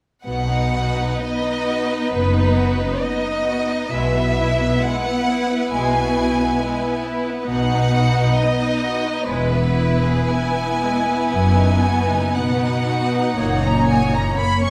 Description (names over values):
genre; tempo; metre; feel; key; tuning
classical, slow romantic movement for string orchestra; 55-68 BPM; 4/4; rubato; B major; A4 = 440 Hz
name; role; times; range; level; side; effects
rich chamber violin section; melody; 0.3-14.7 s; B4 to C#6; -25 LUFS; equal; none
clear chamber violin section; second line; 0.3-14.7 s; G#3 to C#5; -27 LUFS; equal; none
rich studio viola section; accompaniment; 0.3-14.7 s; A#3 to E4; -26 LUFS; equal; none
rich studio cello section; bass; 0.3-14.7 s; E2 to B2; -25 LUFS; equal; none
warm chamber double bass section; bass; 0.3-14.2 s; E1 to B1; -26 LUFS; equal; none
room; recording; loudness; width
moderate recital hall reverb, RT60 1.6 s; close, detailed microphones; -19 LUFS; mono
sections
0.3-14.7 A section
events
none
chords
0.3 B; 3.9 E/B; 7.5 B; 9.3 E; 11.3 B/F#; 13.4 F#